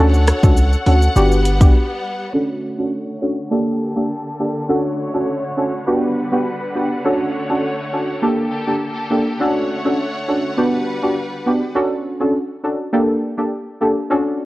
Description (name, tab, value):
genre	dancehall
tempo	102 BPM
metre	4/4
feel	straight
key	D major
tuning	A4 = 440 Hz
part	deep mellow chord stab	accompaniment	0.0-14.5 s	Bb3 to A4	-18 LUFS	equal	chorus, low-pass filter
part	clear studio string section	sustained chords	0.0-11.7 s	D3 to F#5	-25 LUFS	left 1 dB	sidechain pumping, low-pass filter
part	hard-hitting 808-style bass	bass	0.0-1.7 s	G1 to D2	-14 LUFS	equal	none
part	pop drum kit	drums	0.1-1.7 s	hi-hat, kick drum, rim click, shaker	-13 LUFS	equal	none
room	light reverb, digital ambience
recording	worn, warbling old tape, cassette tape, warbly pitch drift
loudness	-16 LUFS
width	side -18 dB against mid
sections	0.0-2.3 A section; 2.3-11.8 B section; 11.8-14.5 C section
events	break 1.8-2.3; filter sweep 2.3-11.8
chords	0.0 Dmaj7; 1.2 Gmaj7; 2.3 Dmaj7; 3.5 Gmadd9; 4.7 Dmaj7; 5.9 Gmaj7; 7.0 Dmaj7; 8.2 Gmadd9; 9.4 Dmaj7; 10.6 Gmaj7; 11.8 Dmaj7; 12.9 Gmadd9